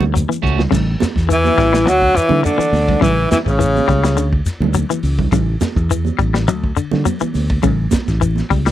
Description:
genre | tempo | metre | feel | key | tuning
afrobeat | 104 BPM | 4/4 | straight | A mixolydian | A4 = 440 Hz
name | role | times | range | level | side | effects
twangy electric guitar | arpeggios | 0.0-8.7 s | C#3 to G3 | -21 LUFS | left 10 dB | none
electric guitar at the edge of break-up | stabs | 0.0-0.6 s | A3 to F#4 | -20 LUFS | right 10 dB | none
fingered electric bass | bass | 0.0-8.7 s | A1 to D3 | -17 LUFS | equal | none
congas | percussion | 0.0-8.5 s | none | -23 LUFS | right 9 dB | none
crunchy breakbeat drum kit | drums | 0.2-8.7 s | crash cymbal, hi-hat, kick drum, ride cymbal, snare drum | -21 LUFS | equal | none
shekere | percussion | 0.2-8.7 s | none | -22 LUFS | left 2 dB | none
breathy tenor saxophone | melody | 1.3-4.3 s | C#3 to F#3 | -15 LUFS | left 1 dB | slapback echo
raspy alto saxophone | second line | 1.3-4.3 s | C#4 to F#4 | -22 LUFS | right 4 dB | none
room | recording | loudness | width
little or no reverb | dry, close 1970s-style studio recording | -13 LUFS | side -12 dB against mid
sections
0.7-8.7 A section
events
drum fill 0.4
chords
0.0 Dmaj7; 0.7 A7; 1.9 D; 3.0 A7; 4.2 Dmaj7(no3); 5.3 A7; 6.5 D; 7.6 A7

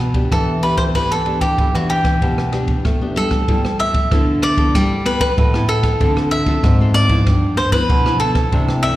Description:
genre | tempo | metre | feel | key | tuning
samba and choro | 95 BPM | 4/4 | straight | E minor, G major from 3.5 s | A4 = 439 Hz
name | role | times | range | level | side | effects
cavaquinho | melody | 0.0-9.0 s | F#4 to E5 | -20 LUFS | equal | slapback echo
nylon-string guitar | accompaniment | 0.0-9.0 s | G2 to A4 | -24 LUFS | left 2 dB | none
nylon-string guitar | bass | 0.0-9.0 s | G2 to A3 | -19 LUFS | equal | none
open jazz drum kit | drums | 0.1-9.0 s | kick drum, ride cymbal, rim click | -18 LUFS | equal | none
room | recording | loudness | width
little or no reverb | live gig heard through the venue's PA, recital hall reverb | -14 LUFS | side -15 dB against mid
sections
0.0-3.5 A section; 3.5-9.0 B section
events
none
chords
0.0 Em7; 3.5 G69; 6.0 Dm7; 7.3 G6

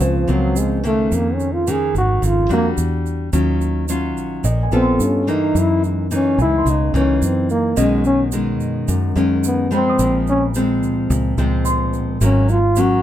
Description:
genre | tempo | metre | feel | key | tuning
bossa nova | 108 BPM | 4/4 | straight | unclear | A4 = 435 Hz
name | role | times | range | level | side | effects
breathy trombone | melody | 0.0-13.0 s | F3 to Ab4 | -18 LUFS | equal | none
nylon-string guitar | accompaniment | 0.0-13.0 s | F2 to A4 | -20 LUFS | left 1 dB | none
warm baby grand piano | accompaniment | 0.0-12.4 s | C5 to Eb6 | -28 LUFS | right 2 dB | none
fingered electric bass | bass | 0.0-13.0 s | Ab1 to G2 | -20 LUFS | equal | none
egg shaker | percussion | 0.0-13.0 s | none | -31 LUFS | right 9 dB | none
room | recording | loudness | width
light reverb | dark, warm production | -15 LUFS | side -11 dB against mid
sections
0.0-13.0 A section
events
trombone solo 0.0-13.0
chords
0.0 Gbmaj9#11; 1.1 Db69/F; 2.8 Em9; 3.3 Ebm9; 5.0 G9; 5.6 Gb13; 7.2 Gb6; 7.8 Cb69; 10.0 Bbm11; 12.2 Ab9sus4

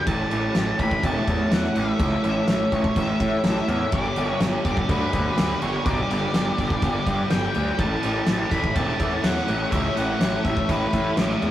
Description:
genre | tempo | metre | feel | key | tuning
rock, shoegaze and dream pop | 124 BPM | 4/4 | straight | unclear | A4 = 441 Hz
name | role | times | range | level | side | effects
octave-fuzz lead guitar | melody | 0.0-11.5 s | B4 to B5 | -29 LUFS | left 1 dB | distortion
shimmering ambient pad | sustained chords | 0.0-11.5 s | A4 to D6 | -31 LUFS | left 2 dB | chorus, built-in reverb
biting overdriven guitar | riff | 0.0-11.5 s | G2 to A4 | -30 LUFS | right 3 dB | none
thick fuzz guitar | riff | 0.0-11.5 s | G2 to A3 | -29 LUFS | left 2 dB | distortion
fuzz picked electric bass | bass | 0.1-11.5 s | E1 to A2 | -26 LUFS | equal | overdrive
loose indie drum kit | drums | 0.1-11.5 s | crash cymbal, kick drum, snare drum | -25 LUFS | equal | none
tight distorted guitar | riff | 3.9-11.5 s | G2 to A3 | -34 LUFS | equal | distortion
room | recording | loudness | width
wet small room reverb, RT60 0.5 s | rough rehearsal-room recording | -20 LUFS | side -12 dB against mid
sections
0.0-11.5 A section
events
none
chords
0.1 A; 3.9 G; 7.8 A

